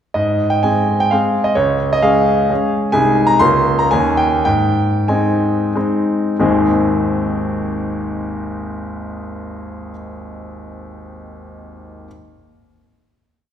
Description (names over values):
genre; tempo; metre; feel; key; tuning
classical, romantic triple-time dance for piano with dotted rhythms; 88-143 BPM; 3/4; rubato; Ab major; A4 = 440 Hz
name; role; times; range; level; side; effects
bright concert grand piano; solo; 0.1-12.1 s; Ab1 to C6; -15 LUFS; equal; none
room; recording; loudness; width
wet recital hall reverb, RT60 1.6 s; heard from further back in the room; -14 LUFS; side -9 dB against mid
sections
0.1-6.4 A section; 6.4-10.0 final chord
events
slowing down 2.3-6.4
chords
0.1 Ab; 1.6 Db; 2.9 Ab/C; 3.4 Bbm/Db; 3.9 Eb7; 4.5 Ab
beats
| 0.15 0.64 1.12 | 1.58 2.04 2.50 | 2.93 3.40 3.92 | 4.46 5.09 5.76 | 6.39 7.00 7.62 | 8.20 8.80 9.39